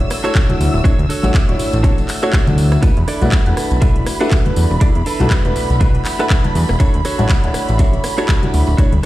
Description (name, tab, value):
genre	filtered disco house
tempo	121 BPM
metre	4/4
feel	swing 56% on 16ths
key	unclear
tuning	A4 = 441 Hz
part	clear grand piano	accompaniment	0.0-8.9 s	A3 to C#5	-21 LUFS	left 1 dB	phaser, sidechain pumping
part	rich studio violin section	sustained chords	0.0-9.1 s	B5 to E6	-27 LUFS	right 3 dB	sidechain pumping
part	fat analog bass	bass	0.0-9.0 s	D1 to E2	-16 LUFS	equal	sidechain pumping
part	house drum kit	drums	0.0-9.1 s	handclaps, hi-hat, rim click	-25 LUFS	right 1 dB	sidechain pumping on hats, sidechain pumping on cymbals
part	direct-recorded clean electric guitar	riff	0.1-9.1 s	D4 to E5	-24 LUFS	right 3 dB	sidechain pumping
part	tambourine and congas	percussion	0.1-9.0 s	none	-26 LUFS	left 1 dB	sidechain pumping on perc
part	electronic kick drum	drums	0.4-8.9 s	none	-15 LUFS	equal	none
room	little or no reverb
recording	played on a big sound system in a bare room, stone room reverb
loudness	-12 LUFS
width	side -16 dB against mid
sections	0.0-9.1 A section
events	none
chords	0.0 Dmaj7; 2.8 E7sus4; 6.8 Dmaj7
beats	0.35 | 0.85 1.35 1.84 2.34 | 2.83 3.33 3.83 4.32 | 4.82 5.31 5.81 6.30 | 6.80 7.30 7.79 8.29 | 8.78